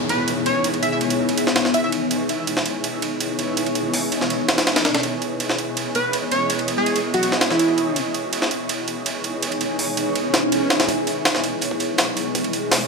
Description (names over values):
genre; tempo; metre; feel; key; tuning
drum and bass, jungle; 164 BPM; 4/4; straight; C# minor; A4 = 440 Hz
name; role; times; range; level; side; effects
granular cloud pad; sustained chords; 0.0-12.9 s; B3 to D#5; -23 LUFS; left 1 dB; built-in reverb
downlifter, swell and riser; sound effects; 0.0-2.1, 10.3-12.9 s; none; -29 LUFS; equal; none
plucky unison lead; melody; 0.1-1.9, 6.0-8.0 s; E4 to E5; -24 LUFS; right 1 dB; cassette tape, dub echo
jungle sampler-style drum kit; drums; 0.1-12.8 s; hi-hat, kick drum, ride cymbal, snare drum; -22 LUFS; right 1 dB; overdrive, high-pass filter on cymbals, studio reverb, high-pass filter on kick, high-pass filter on snare, high-pass filter on hats
crunchy breakbeat drum kit; drums; 10.9-12.8 s; hi-hat, snare drum; -31 LUFS; equal; none
room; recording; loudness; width
moderate plate reverb, RT60 2.0 s, digital ambience; none; -18 LUFS; side -4 dB against mid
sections
0.0-10.9 A section; 10.9-12.9 B section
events
swell 10.3-10.9; build-up 10.9-12.9; filter sweep on ambient pad 10.9-12.9; riser 11.7-12.9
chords
0.0 C#m9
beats
0.28 | 0.65 1.01 1.38 1.74 | 2.11 2.48 2.84 3.21 | 3.57 3.94 4.30 4.67 | 5.04 5.40 5.77 6.13 | 6.50 6.87 7.23 7.60 | 7.96 8.33 8.70 9.06 | 9.43 9.79 10.16 10.52 | 10.89 11.26 11.62 11.99 | 12.35 12.72